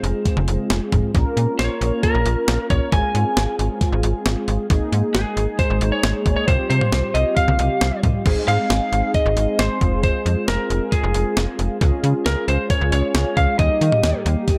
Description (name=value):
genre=synth-pop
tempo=135 BPM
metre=4/4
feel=straight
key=F minor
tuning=A4 = 441 Hz
part: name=mellow synth brass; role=accompaniment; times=0.0-14.6 s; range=G3 to Bb4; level=-27 LUFS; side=equal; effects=chorus, tape echo
part: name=slap-like FM bass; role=bass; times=0.0-14.4 s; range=F1 to Eb3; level=-23 LUFS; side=equal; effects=none
part: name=clean 12-bit digital drum machine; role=drums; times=0.0-14.6 s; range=crash cymbal, hi-hat, kick drum, snare drum, toms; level=-24 LUFS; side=equal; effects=tape echo
part: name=lightly driven lead guitar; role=melody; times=1.6-14.2 s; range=Ab4 to Ab5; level=-25 LUFS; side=equal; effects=tape echo
room=moderate spring reverb, RT60 1.1 s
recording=echo-heavy mix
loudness=-19 LUFS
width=mono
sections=0.0-8.3 A section; 8.3-14.6 B section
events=none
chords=0.0 Fm; 1.1 Bbm; 2.9 Fm/Ab; 4.7 Absus2; 6.5 Csus4; 8.3 Ab; 9.8 Fm; 11.8 Db; 13.6 Eb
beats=0.26 0.70 | 1.15 1.59 2.04 2.48 | 2.92 3.37 3.81 4.26 | 4.70 5.15 5.59 6.04 | 6.48 6.92 7.37 7.81 | 8.26 8.70 9.15 9.59 | 10.04 10.48 10.92 11.37 | 11.81 12.26 12.70 13.15 | 13.59 14.04 14.48